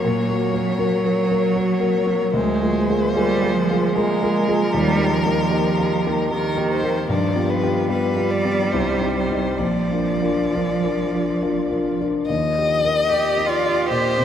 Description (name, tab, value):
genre	classical, slow romantic movement for piano trio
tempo	65-79 BPM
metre	3/4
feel	rubato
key	Eb major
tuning	A4 = 440 Hz
part	warm violin	melody	0.0-14.2 s	Bb4 to Eb5	-24 LUFS	left 4 dB	none
part	rich cello	second line	0.0-14.2 s	Eb3 to G4	-22 LUFS	right 4 dB	none
part	dark grand piano	accompaniment	0.0-14.2 s	Bb1 to Bb4	-21 LUFS	left 1 dB	none
room	wet huge ambient reverb, RT60 7.5 s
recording	in a vast, echoing space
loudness	-18 LUFS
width	side -9 dB against mid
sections	0.0-12.3 A section; 12.3-14.2 B section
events	none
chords	0.0 Gb/Bb; 2.3 Bb7/D; 4.7 Eb; 7.1 G7; 8.7 Cm; 9.6 Bb; 12.3 Eb